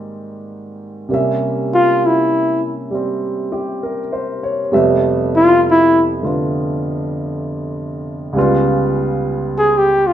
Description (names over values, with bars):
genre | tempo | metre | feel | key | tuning
jazz ballad | 66 BPM | 4/4 | swing 66% on 8ths | C major | A4 = 441 Hz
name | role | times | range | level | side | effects
dark baby grand piano | accompaniment | 0.0-10.1 s | Db2 to E5 | -18 LUFS | right 1 dB | none
warm flugelhorn | melody | 1.7-10.1 s | E4 to Ab4 | -11 LUFS | left 1 dB | none
room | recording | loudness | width
wet large studio reverb, RT60 0.9 s | band playing live in one room | -14 LUFS | side -10 dB against mid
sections
0.0-10.1 A section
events
flugelhorn solo 0.0-10.1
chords
0.0 Abmaj9#11; 1.1 C7b9; 4.7 Fmaj9#11; 8.4 Db7#11